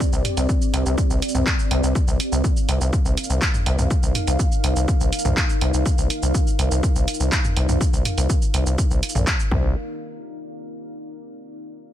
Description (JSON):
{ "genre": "melodic techno", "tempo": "123 BPM", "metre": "4/4", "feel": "straight", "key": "unclear", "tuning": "A4 = 440 Hz", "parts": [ { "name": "deep dark ambient pad", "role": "sustained chords", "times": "0.0-9.7 s", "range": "C4 to F5", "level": "-28 LUFS", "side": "equal", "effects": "chorus, built-in reverb, sidechain pumping" }, { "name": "electronic kick drum", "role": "drums", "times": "0.0-9.6 s", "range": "none", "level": "-21 LUFS", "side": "equal", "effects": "none" }, { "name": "punchy analog drum machine", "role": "drums", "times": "0.0-9.5 s", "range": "handclaps, hi-hat, shaker, toms", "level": "-25 LUFS", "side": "right 1 dB", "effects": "sidechain pumping on perc, sidechain pumping on hats, sidechain pumping on toms" }, { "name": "gritty driven synth bass", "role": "bass", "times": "0.1-9.7 s", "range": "Bb1 to C2", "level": "-21 LUFS", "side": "equal", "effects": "tube saturation, sidechain pumping" } ], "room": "little or no reverb", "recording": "none", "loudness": "-18 LUFS", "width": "side -12 dB against mid", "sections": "0.0-9.8 A section; 9.8-11.7 B section", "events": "none", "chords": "0.0 C5; 2.0 Ebsus2/C; 9.5 C5; 9.8 N.C." }